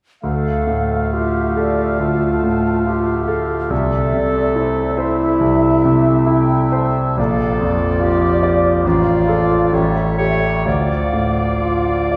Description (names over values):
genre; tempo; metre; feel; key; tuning
classical, romantic movement for piano and orchestra; 69 BPM; 4/4; uneven beats, rubato; D minor; A4 = 437 Hz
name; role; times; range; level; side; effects
clear concert grand piano; melody; 0.2-12.2 s; A1 to D5; -19 LUFS; equal; none
large flute ensemble; second line; 0.2-12.2 s; C5 to A5; -28 LUFS; equal; none
warm clarinet; second line; 0.2-12.2 s; E4 to D5; -23 LUFS; equal; none
warm oboe; second line; 0.2-12.2 s; C#5 to F5; -28 LUFS; equal; none
warm bassoon; accompaniment; 0.2-12.2 s; F3 to A3; -29 LUFS; equal; none
room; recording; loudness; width
wet concert hall reverb, RT60 2.3 s; heard from further back in the room; -17 LUFS; mono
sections
0.2-12.2 A section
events
none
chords
0.2 Dm; 7.2 Bbmaj7; 9.7 A7; 10.7 Dm